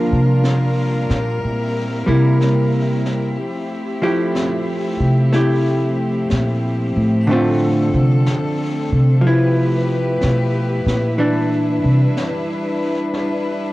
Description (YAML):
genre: jazz ballad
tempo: 62 BPM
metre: 4/4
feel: swing 66% on 8ths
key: C major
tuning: A4 = 442 Hz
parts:
  - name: archtop guitar, miked and amplified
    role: accompaniment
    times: 0.0-13.7 s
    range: D3 to G4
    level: -20 LUFS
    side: equal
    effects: none
  - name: clear chamber cello section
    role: sustained chords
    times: 0.0-13.7 s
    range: F3 to B4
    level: -22 LUFS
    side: left 1 dB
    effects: none
  - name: upright bass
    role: bass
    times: 0.0-12.0 s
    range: A2 to D3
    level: -17 LUFS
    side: equal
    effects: tube saturation
  - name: brushed snare drum and snare drum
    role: drums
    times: 0.4-13.7 s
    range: none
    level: -31 LUFS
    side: equal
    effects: cassette tape
room: small room ambience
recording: home recording on cassette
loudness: -15 LUFS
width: side -18 dB against mid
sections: 0.0-13.7 A section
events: upright bass solo 0.0-13.7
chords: 0.0 Gm7; 1.4 C7; 3.4 Fmaj9; 7.3 Dm7; 9.2 G13; 11.2 Cmaj9 (rootless)